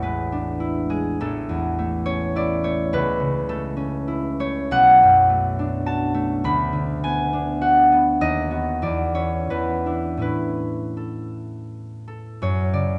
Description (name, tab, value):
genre	classical, solo harp piece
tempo	77-106 BPM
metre	3/4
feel	rubato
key	A major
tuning	A4 = 442 Hz
part	concert harp	solo	0.0-13.0 s	A1 to B5	-22 LUFS	equal	none
room	wet recital hall reverb, RT60 1.6 s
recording	nothing above 10.3 kHz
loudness	-21 LUFS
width	mono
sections	0.0-12.4 A section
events	none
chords	0.0 E7/A; 1.2 A; 2.9 A/C#; 4.7 Bm7; 6.4 Bm/D; 8.2 B/D#; 8.8 C#m/E; 9.5 E5; 10.2 A; 12.4 F#m